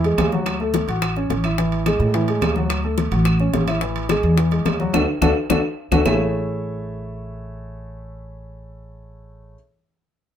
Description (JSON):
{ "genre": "Afro-Cuban jazz", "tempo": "214 BPM", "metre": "4/4", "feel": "straight", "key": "A major", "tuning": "A4 = 440 Hz", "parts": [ { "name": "warm grand piano", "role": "accompaniment", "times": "0.0-9.6 s", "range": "E3 to F#5", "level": "-23 LUFS", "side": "left 1 dB", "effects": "none" }, { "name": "upright bass", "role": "bass", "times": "0.0-9.5 s", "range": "A1 to A2", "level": "-22 LUFS", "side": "right 1 dB", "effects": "none" }, { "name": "bongos", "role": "percussion", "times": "0.0-6.1 s", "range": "none", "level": "-25 LUFS", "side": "left 6 dB", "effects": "none" }, { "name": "congas", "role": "percussion", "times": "0.0-6.1 s", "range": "none", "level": "-26 LUFS", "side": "left 3 dB", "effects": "none" }, { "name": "timbales", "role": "percussion", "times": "0.0-6.1 s", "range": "none", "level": "-27 LUFS", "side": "right 5 dB", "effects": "none" }, { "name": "claves", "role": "percussion", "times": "0.2-6.1 s", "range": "none", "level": "-30 LUFS", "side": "right 2 dB", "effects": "none" } ], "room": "light reverb", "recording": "minimal, uncompressed stereo recording", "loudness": "-17 LUFS", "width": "side -10 dB against mid", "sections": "0.0-6.1 A section; 6.1-8.3 B section", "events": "drum fill 4.9-6.1; band accent 4.9-6.1", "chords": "0.5 Dmaj7; 1.6 A5; 2.7 Dmaj7; 3.8 A5; 4.9 D; 6.1 Amaj7" }